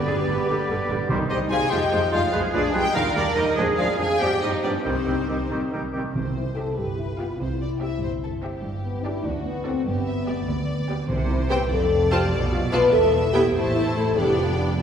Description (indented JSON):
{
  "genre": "quick classical-period movement for symphony orchestra",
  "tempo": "97 BPM (dotted quarters)",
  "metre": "6/8",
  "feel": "straight",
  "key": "C minor, C major from 6.2 s",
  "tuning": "A4 = 440 Hz",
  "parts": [
    { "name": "warm studio violin section", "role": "melody", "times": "0.0-14.8 s", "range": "F#4 to Ab5", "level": "-31 LUFS", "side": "left 2 dB", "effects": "none" },
    { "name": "bright clarinet", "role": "second line", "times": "0.0-6.0 s", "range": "B3 to G4", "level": "-33 LUFS", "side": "equal", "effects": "none" },
    { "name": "mellow hollow large flute ensemble", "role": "second line", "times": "0.0-5.5 s", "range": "G4 to F5", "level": "-30 LUFS", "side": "left 3 dB", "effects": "none" },
    { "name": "warm oboe", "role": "second line", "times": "0.0-6.0 s", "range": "G4 to D5", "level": "-31 LUFS", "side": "equal", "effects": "none" },
    { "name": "warm studio violin section", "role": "second line", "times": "0.0-14.8 s", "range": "B3 to A5", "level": "-33 LUFS", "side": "left 1 dB", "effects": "none" },
    { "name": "dark bassoon", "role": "accompaniment", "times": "0.0-6.0 s", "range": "Eb3 to B3", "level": "-33 LUFS", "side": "right 1 dB", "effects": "none" },
    { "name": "mellow French horn section", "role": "sustained chords", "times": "0.0-14.7 s", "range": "B3 to B4", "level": "-25 LUFS", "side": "left 2 dB", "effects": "none" },
    { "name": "timpani", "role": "percussion", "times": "0.0-1.7, 6.2-6.7, 11.1-11.7 s", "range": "G2 to C3", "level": "-31 LUFS", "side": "right 2 dB", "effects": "none" },
    { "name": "warm studio viola section", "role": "accompaniment", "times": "0.1-14.8 s", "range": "D3 to A4", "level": "-31 LUFS", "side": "right 2 dB", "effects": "none" },
    { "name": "dark studio double bass section", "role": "bass", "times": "0.1-14.8 s", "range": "E1 to G2", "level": "-28 LUFS", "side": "right 1 dB", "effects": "none" },
    { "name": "warm studio cello section", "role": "bass", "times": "0.1-14.8 s", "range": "D2 to Bb4", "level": "-30 LUFS", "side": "right 2 dB", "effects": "none" }
  ],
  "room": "wet concert hall reverb, RT60 2.0 s",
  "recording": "heard from further back in the room",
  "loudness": "-20 LUFS",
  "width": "side -8 dB against mid",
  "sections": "0.0-6.2 A section; 6.2-14.8 A section",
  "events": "none",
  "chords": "0.0 G; 1.1 Cm; 1.7 Fm; 2.3 G7b9b13/B; 3.0 Eb; 3.6 Ddim/F; 4.2 G7; 4.8 Cm; 6.2 C; 6.8 G7; 7.4 C; 8.6 G5; 9.3 D7; 9.9 G; 11.1 C5; 11.7 F; 12.3 Bdim; 12.9 Em; 13.5 Am; 14.2 G7/F"
}